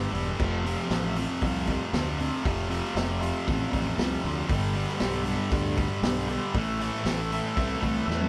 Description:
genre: garage rock duo or trio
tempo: 117 BPM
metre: 4/4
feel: straight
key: unclear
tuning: A4 = 442 Hz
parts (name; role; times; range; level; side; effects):
- thick fuzz guitar; riff; 0.0-8.3 s; F2 to A3; -31 LUFS; equal; distortion
- fuzz fingered electric bass; bass; 0.0-8.2 s; E1 to E2; -34 LUFS; equal; overdrive
- vintage drum kit; drums; 0.1-8.3 s; crash cymbal, hi-hat, kick drum, snare drum, toms; -34 LUFS; equal; none
room: moderate stone room reverb, RT60 1.3 s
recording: band playing live in one room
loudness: -28 LUFS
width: mono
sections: 0.0-8.3 A section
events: drum fill 8.1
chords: 0.4 F; 4.5 G; 6.5 Am

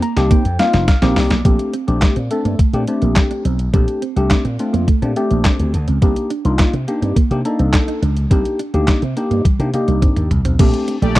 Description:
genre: early-eighties boogie funk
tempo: 105 BPM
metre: 4/4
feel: straight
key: Bb major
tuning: A4 = 440 Hz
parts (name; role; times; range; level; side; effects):
- tine electric piano; accompaniment; 0.0-11.2 s; A3 to Bb5; -19 LUFS; left 2 dB; phaser
- mellow electric guitar; riff; 0.0-11.1 s; G3 to Eb4; -23 LUFS; right 6 dB; wide subtle chorus
- detuned 8-bit digital drum machine; drums; 0.0-11.2 s; crash cymbal, handclaps, hi-hat, kick drum, snare drum, toms; -15 LUFS; equal; none
- slap bass with an envelope filter; bass; 0.2-11.2 s; F1 to C3; -18 LUFS; equal; none
- analog synth brass; second line; 11.0-11.2 s; A3 to D5; -21 LUFS; equal; chorus
room: little or no reverb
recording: dry, close 1970s-style studio recording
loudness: -14 LUFS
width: side -17 dB against mid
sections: 0.0-1.4 A section; 1.4-10.6 B section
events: drum fill 0.0-1.4, 9.4-10.6; tine electric piano fill 0.0-1.4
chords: 0.0 F7sus4; 1.4 Bbmaj13; 6.0 Cm9; 10.6 Bbmaj13

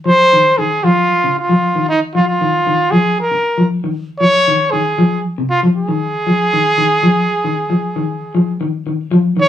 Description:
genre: afrobeat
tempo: 116 BPM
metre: 4/4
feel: straight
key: unclear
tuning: A4 = 442 Hz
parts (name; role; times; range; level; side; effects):
- breathy trumpet; melody; 0.1-9.5 s; Eb4 to Db5; -13 LUFS; right 1 dB; none
- electric guitar at the edge of break-up; arpeggios; 0.1-9.5 s; C3 to F3; -16 LUFS; left 2 dB; none
room: wet studio reverb, RT60 0.5 s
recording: band playing live in one room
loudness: -12 LUFS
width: side -11 dB against mid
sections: 0.0-9.1 A section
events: none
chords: 0.0 F5; 0.8 N.C.; 5.0 Fm7

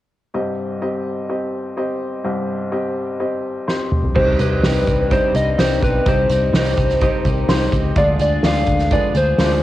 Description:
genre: piano-driven pop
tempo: 126 BPM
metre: 4/4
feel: straight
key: C minor, C harmonic minor from 4.2 s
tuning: A4 = 440 Hz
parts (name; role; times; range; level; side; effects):
- warm baby grand piano; accompaniment; 0.3-9.6 s; C2 to Eb5; -22 LUFS; left 1 dB; cassette tape
- soft-mallet drum kit; drums; 3.7-9.5 s; crash cymbal, hi-hat, kick drum, snare drum, toms; -20 LUFS; equal; cassette tape
- mellow French horn section; second line; 4.1-9.6 s; G2 to F4; -27 LUFS; left 6 dB; cassette tape, tape echo
- soft struck synth lead; melody; 4.2-9.6 s; B4 to F5; -19 LUFS; equal; chorus, cassette tape
- twelve-string electric guitar; riff; 4.2-9.6 s; C3 to Ab4; -28 LUFS; right 8 dB; spring reverb, cassette tape
- vintage muted fingered electric bass; bass; 4.2-9.6 s; B1 to D2; -20 LUFS; equal; none
room: small room ambience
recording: home recording on cassette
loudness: -16 LUFS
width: side -14 dB against mid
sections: 0.3-4.2 A section; 4.2-9.6 B section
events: drum fill 3.7-4.2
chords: 0.3 Cm; 8.0 Ddim

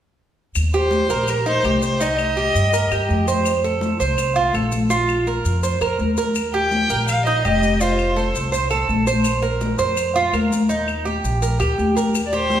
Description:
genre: latin, Cuban son and guajira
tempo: 166 BPM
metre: 4/4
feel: straight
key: Eb major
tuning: A4 = 442 Hz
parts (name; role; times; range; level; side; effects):
- upright bass; bass; 0.6-12.6 s; F1 to G2; -24 LUFS; equal; none
- claves; percussion; 0.6-12.3 s; none; -32 LUFS; left 3 dB; none
- congas; percussion; 0.6-12.6 s; none; -24 LUFS; left 2 dB; none
- maracas; percussion; 0.6-12.6 s; none; -33 LUFS; left 5 dB; none
- warm violin; melody; 0.7-3.2, 6.5-8.5, 12.3-12.6 s; Bb4 to G5; -21 LUFS; left 1 dB; none
- Cuban tres; arpeggios; 0.7-12.6 s; Eb4 to C5; -21 LUFS; right 3 dB; none
room: wet recital hall reverb, RT60 1.4 s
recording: recorded in a church or concert hall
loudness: -17 LUFS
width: side -10 dB against mid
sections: 0.6-12.2 A section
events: none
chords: 0.6 Eb6; 2.0 Cm7; 3.5 F; 4.9 Bbsus2; 6.4 Eb; 7.8 F; 9.3 Bbsus2; 10.7 Eb

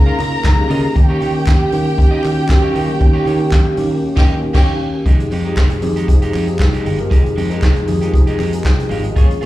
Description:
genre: disco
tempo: 117 BPM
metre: 4/4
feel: straight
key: F minor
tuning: A4 = 440 Hz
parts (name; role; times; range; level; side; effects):
- warm symphonic violin section; second line; 0.0-4.7 s; G4 to Bb5; -23 LUFS; right 1 dB; slapback echo
- mellow tine electric piano; accompaniment; 0.0-9.5 s; Db3 to Bb5; -21 LUFS; left 2 dB; ensemble chorus, slapback echo
- warm French horn section; sustained chords; 0.0-9.5 s; Db3 to G4; -25 LUFS; right 3 dB; none
- fingered electric bass; bass; 0.0-9.5 s; F1 to Eb3; -19 LUFS; equal; none
- electric guitar at the edge of break-up; accompaniment; 0.1-9.5 s; Ab3 to F5; -28 LUFS; right 5 dB; slapback echo
- vintage drum kit; drums; 0.2-9.5 s; crash cymbal, handclaps, hi-hat, kick drum, snare drum; -14 LUFS; equal; none
- congas; percussion; 0.2-9.5 s; none; -31 LUFS; left 4 dB; none
- group handclap; percussion; 0.2-8.8 s; none; -35 LUFS; right 2 dB; none
room: small room reverb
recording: live gig heard through the venue's PA, club reverb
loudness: -12 LUFS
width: side -16 dB against mid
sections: 0.0-5.1 A section; 5.1-9.5 B section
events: band accent 4.0-5.1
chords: 0.0 Db69; 1.0 Eb7; 5.1 Fm9

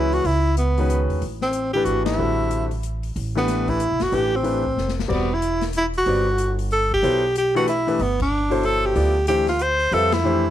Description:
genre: modal jazz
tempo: 186 BPM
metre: 3/4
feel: swing 62% on 8ths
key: E minor from 5.1 s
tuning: A4 = 441 Hz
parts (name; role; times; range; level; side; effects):
- warm tenor saxophone; melody; 0.0-10.5 s; B3 to C5; -21 LUFS; equal; none
- clear grand piano; accompaniment; 0.0-10.4 s; B2 to E5; -25 LUFS; left 2 dB; none
- upright bass; bass; 0.0-10.5 s; E1 to F2; -24 LUFS; equal; none
- open jazz drum kit; drums; 0.1-10.2 s; crash cymbal, hi-hat, kick drum, ride cymbal, snare drum; -33 LUFS; left 6 dB; none
room: light reverb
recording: 1960s-style stereo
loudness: -18 LUFS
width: side -12 dB against mid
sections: 0.0-5.1 A section; 5.1-10.5 B section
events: band accent 2.0, 8.2, 10.1; drum fill 4.8-5.1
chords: 0.0 C#m9; 1.2 Am9; 5.1 Em11; 9.0 Dm11

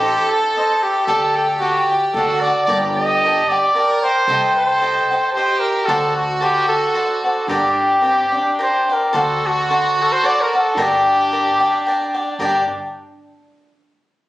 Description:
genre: mexican folk, mariachi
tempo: 112 BPM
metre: 3/4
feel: straight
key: G harmonic minor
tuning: A4 = 440 Hz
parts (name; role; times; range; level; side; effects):
- clear trumpet; melody; 0.0-12.7 s; F#4 to Eb5; -17 LUFS; equal; none
- dark chamber violin section; second line; 0.0-12.7 s; C4 to Bb4; -24 LUFS; right 2 dB; none
- cavaquinho; accompaniment; 0.0-12.6 s; D4 to A5; -19 LUFS; left 1 dB; none
- upright bass; bass; 0.0-12.7 s; G1 to D2; -31 LUFS; equal; none
room: light reverb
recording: recorded on a phone in the room, studio reverb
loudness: -14 LUFS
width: side -16 dB against mid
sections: 0.0-9.1 A section; 9.1-12.4 B section; 12.4-14.0 C section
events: none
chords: 0.0 Adim; 1.1 Dsus4; 2.1 D; 2.7 Gmadd9; 4.3 Cm; 5.9 D7; 7.5 Gm; 9.1 D7; 10.8 Gm

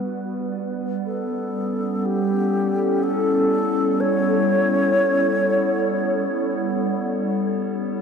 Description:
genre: ambient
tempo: free time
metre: none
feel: none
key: unclear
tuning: A4 = 441 Hz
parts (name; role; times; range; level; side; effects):
- warbly tape-like pad; sustained chords; 0.0-8.0 s; G3 to F#5; -21 LUFS; equal; chorus, built-in reverb, phaser
- bright reedy wooden-headed alto flute; melody; 1.1-7.0 s; G4 to C#5; -23 LUFS; equal; ping-pong delay
room: wet huge ambient reverb, RT60 7.9 s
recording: none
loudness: -19 LUFS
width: side -6 dB against mid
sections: 0.0-8.0 A section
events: filter sweep on ambient pad 0.0-8.0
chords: 0.1 A9/G

